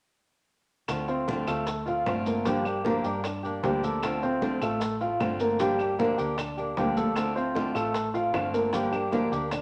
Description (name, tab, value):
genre	latin, Cuban son and guajira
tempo	153 BPM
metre	4/4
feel	straight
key	D minor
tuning	A4 = 439 Hz
part	fingerpicked swing-style acoustic guitar	accompaniment	0.9-9.6 s	D3 to G4	-32 LUFS	equal	none
part	hollow-body short-scale fingered electric bass	bass	0.9-9.6 s	G1 to G2	-41 LUFS	equal	none
part	bongos	percussion	0.9-9.6 s	none	-40 LUFS	equal	none
part	claves	percussion	0.9-9.6 s	none	-44 LUFS	equal	none
part	congas	percussion	0.9-9.6 s	none	-39 LUFS	equal	none
part	maracas	percussion	0.9-9.6 s	none	-48 LUFS	equal	none
part	dark baby grand piano	arpeggios	1.1-9.6 s	G3 to F5	-31 LUFS	equal	none
room	wet large studio reverb, RT60 0.9 s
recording	none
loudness	-28 LUFS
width	mono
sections	0.9-9.6 A section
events	none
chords	0.9 Dm7; 2.5 Gm7; 4.0 Dm7; 5.6 Gm7; 7.2 Dm7; 8.7 Gm7